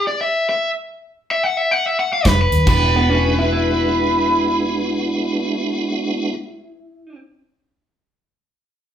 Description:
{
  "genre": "electric blues shuffle",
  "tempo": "145 BPM",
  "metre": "4/4",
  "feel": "swing 65% on 8ths",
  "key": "E mixolydian",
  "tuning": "A4 = 441 Hz",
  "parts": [
    { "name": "overdriven electric guitar", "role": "melody", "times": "0.0-6.3 s", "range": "B4 to F#5", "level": "-19 LUFS", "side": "equal", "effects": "none" },
    { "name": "natural country drum kit", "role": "drums", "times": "2.2-2.8 s", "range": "crash cymbal, hi-hat, kick drum, snare drum", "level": "-20 LUFS", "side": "equal", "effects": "none" },
    { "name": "vintage muted fingered electric bass", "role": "bass", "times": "2.3-6.3 s", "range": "E1 to D#2", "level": "-20 LUFS", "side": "equal", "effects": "none" },
    { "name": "tonewheel organ", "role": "accompaniment", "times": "2.6-6.4 s", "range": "G#3 to F#4", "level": "-21 LUFS", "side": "right 2 dB", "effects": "chorus vibrato, fast rotary speaker" },
    { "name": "electric guitar through a small old amp", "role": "second line", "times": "3.0-7.2 s", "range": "B3 to E4", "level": "-23 LUFS", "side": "left 2 dB", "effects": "none" }
  ],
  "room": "wet large studio reverb, RT60 0.9 s",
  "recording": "band playing live in one room",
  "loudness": "-16 LUFS",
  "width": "side -9 dB against mid",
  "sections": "0.0-2.7 A section; 2.7-6.0 B section",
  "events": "stop 0.0-2.3",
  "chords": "0.0 N.C.; 2.3 B; 2.7 E9",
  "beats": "0.17 0.59 | 1.00 1.42 1.84 2.25 | 2.67 3.08 3.50 3.91 | 4.33 4.74 5.15 5.57"
}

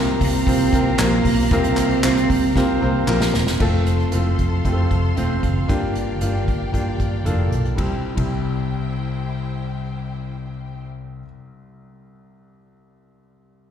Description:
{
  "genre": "piano-driven pop",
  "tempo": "115 BPM",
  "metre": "4/4",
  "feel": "straight",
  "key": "C mixolydian",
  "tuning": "A4 = 439 Hz",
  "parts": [
    { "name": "clear upright piano", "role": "accompaniment", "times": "0.0-13.7 s", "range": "C2 to C5", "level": "-23 LUFS", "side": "equal", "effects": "slapback echo" },
    { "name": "rich studio string section", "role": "sustained chords", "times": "0.0-10.8 s", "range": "E4 to C6", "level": "-32 LUFS", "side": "left 3 dB", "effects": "none" },
    { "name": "fingered electric bass", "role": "bass", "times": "0.0-11.2 s", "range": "E1 to C2", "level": "-22 LUFS", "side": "equal", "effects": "none" },
    { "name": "dark cello", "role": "melody", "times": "0.2-3.0 s", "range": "Bb3 to C4", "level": "-21 LUFS", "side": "right 4 dB", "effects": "slapback echo, tape echo" },
    { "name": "unplugged drum kit", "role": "drums", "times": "0.2-8.3 s", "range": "crash cymbal, handclaps, hi-hat, kick drum, ride cymbal, snare drum", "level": "-23 LUFS", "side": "equal", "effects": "none" },
    { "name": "group handclap", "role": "percussion", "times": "1.0-3.2 s", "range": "none", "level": "-31 LUFS", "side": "left 1 dB", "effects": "none" }
  ],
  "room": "small room ambience",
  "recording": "live gig heard through the venue's PA, recital hall reverb",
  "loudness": "-18 LUFS",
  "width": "side -9 dB against mid",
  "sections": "0.0-3.6 A section; 3.6-7.8 B section; 7.8-12.0 C section",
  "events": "drum fill 2.6-3.6",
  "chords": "0.0 C7sus4; 3.6 F; 5.7 Gm7; 7.8 C",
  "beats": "0.47 0.99 | 1.52 2.04 2.56 3.08 | 3.60 4.13 4.65 5.17 | 5.69 6.21 6.74 7.26 | 7.78 8.30 8.83 9.35 | 9.87 10.39 10.92 11.44"
}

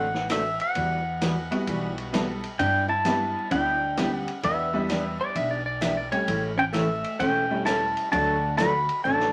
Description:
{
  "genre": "country, western swing",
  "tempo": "130 BPM",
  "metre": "4/4",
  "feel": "swing 66% on 8ths",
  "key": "unclear",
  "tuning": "A4 = 440 Hz",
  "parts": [
    { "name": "pedal steel guitar", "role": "melody", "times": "0.0-9.3 s", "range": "E5 to B5", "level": "-28 LUFS", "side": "equal", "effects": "none" },
    { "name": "picked steel-string acoustic guitar", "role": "accompaniment", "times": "0.0-9.3 s", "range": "C#3 to A4", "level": "-32 LUFS", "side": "equal", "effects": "none" },
    { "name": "upright bass", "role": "bass", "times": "0.0-9.3 s", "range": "E1 to G2", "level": "-37 LUFS", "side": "equal", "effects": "none" },
    { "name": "vintage drum kit", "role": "drums", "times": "0.1-9.3 s", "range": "hi-hat, kick drum, ride cymbal, snare drum", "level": "-36 LUFS", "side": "equal", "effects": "none" },
    { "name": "tack piano", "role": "accompaniment", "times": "1.5-8.8 s", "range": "F#3 to A4", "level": "-33 LUFS", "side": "equal", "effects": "none" },
    { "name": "archtop guitar, miked and amplified", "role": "second line", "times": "2.6-9.3 s", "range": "A3 to F#4", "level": "-34 LUFS", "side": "equal", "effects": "none" },
    { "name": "clean lap steel guitar", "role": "second line", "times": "5.2-6.4 s", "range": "C#5 to E5", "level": "-30 LUFS", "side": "equal", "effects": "none" }
  ],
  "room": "moderate studio reverb, RT60 0.6 s",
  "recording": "vinyl crackle",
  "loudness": "-25 LUFS",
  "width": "mono",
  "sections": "0.0-9.3 A section",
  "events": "drum fill 9.0",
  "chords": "0.0 D7; 0.8 Emadd9; 2.6 G6; 4.4 Em7; 6.3 A7; 8.1 D",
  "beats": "0.29 | 0.75 1.21 1.68 2.13 | 2.60 3.06 3.52 3.98 | 4.44 4.90 5.36 5.82 | 6.28 6.74 7.20 7.66 | 8.12 8.59 9.04"
}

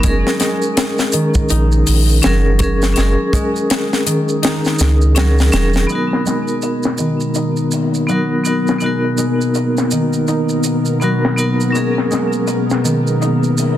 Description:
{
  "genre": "trip hop",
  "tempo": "82 BPM",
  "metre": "4/4",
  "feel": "swing 60% on 16ths",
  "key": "G# minor",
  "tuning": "A4 = 441 Hz",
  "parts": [
    { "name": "vibraphone with hard mallets", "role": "accompaniment", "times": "0.0-13.8 s", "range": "F#3 to A#4", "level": "-19 LUFS", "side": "left 1 dB", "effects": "tremolo, tape echo" },
    { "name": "concert harp", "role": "arpeggios", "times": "0.0-13.8 s", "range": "D#3 to D#4", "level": "-20 LUFS", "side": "equal", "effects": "low-pass filter, tape echo" },
    { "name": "soft dub sub bass", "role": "bass", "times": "0.0-5.9 s", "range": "E1 to C#2", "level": "-13 LUFS", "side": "equal", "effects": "none" },
    { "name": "tight funk drum kit", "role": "drums", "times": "0.0-13.8 s", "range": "hi-hat, kick drum, snare drum", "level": "-19 LUFS", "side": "left 2 dB", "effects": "low-pass filter on kick, studio ambience, low-pass filter on hats, soft clipping on snare, low-pass filter on snare, low-pass filter on room" },
    { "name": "maracas", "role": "percussion", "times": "0.0-13.8 s", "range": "none", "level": "-27 LUFS", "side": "right 5 dB", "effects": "none" },
    { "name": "string machine, cellos", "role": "sustained chords", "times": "5.9-13.8 s", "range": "B3 to A#4", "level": "-19 LUFS", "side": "left 1 dB", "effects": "ensemble chorus" }
  ],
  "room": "light reverb, small room ambience",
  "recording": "dense, heavily limited modern master",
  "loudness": "-13 LUFS",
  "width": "side -12 dB against mid",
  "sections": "0.0-5.9 A section; 5.9-13.8 B section",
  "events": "filter sweep on string machine 5.9-13.8; filter sweep on harp 5.9-13.8",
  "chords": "0.0 F#; 5.9 G#m9; 11.7 F#",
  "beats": "| 0.04 0.77 1.50 2.23 | 2.97 3.70 4.43 5.16 | 5.89 6.62 7.36 8.09 | 8.82 9.55 10.28 11.02 | 11.75 12.48 13.21"
}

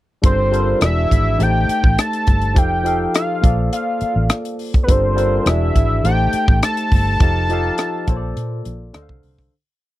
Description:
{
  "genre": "lush 1970s-style soul",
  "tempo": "103 BPM",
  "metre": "4/4",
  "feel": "straight",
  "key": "G minor",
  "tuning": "A4 = 439 Hz",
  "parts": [
    { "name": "barky tine electric piano", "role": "accompaniment", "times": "0.2-9.5 s", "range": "D3 to A5", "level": "-22 LUFS", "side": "left 2 dB", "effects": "overdrive, wide subtle chorus" },
    { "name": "vintage muted fingered electric bass", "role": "bass", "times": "0.2-9.5 s", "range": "E1 to Bb2", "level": "-19 LUFS", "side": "equal", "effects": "none" },
    { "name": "tight funk drum kit", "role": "drums", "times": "0.2-9.5 s", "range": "hi-hat, kick drum, rim click", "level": "-15 LUFS", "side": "equal", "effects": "none" },
    { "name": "fat analog lead", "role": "melody", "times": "0.3-8.9 s", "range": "B4 to A5", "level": "-20 LUFS", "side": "equal", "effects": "chorus" }
  ],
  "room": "little or no reverb",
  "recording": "dry, close 1970s-style studio recording",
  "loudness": "-14 LUFS",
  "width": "side -15 dB against mid",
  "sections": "0.2-9.5 verse",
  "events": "fade-out 7.2-9.5",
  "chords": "0.2 Gm11; 0.8 E7; 1.4 Am7b5; 2.6 F7; 3.4 Bbmaj7; 4.9 Gm11; 5.5 E7; 6.0 Am7b5; 7.2 F7; 8.1 Bbmaj7; 8.9 Dm7",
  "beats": "| 0.24 0.82 1.40 1.99 | 2.57 3.15 3.73 4.31 | 4.89 5.47 6.05 6.63 | 7.21 7.79 8.37 8.95"
}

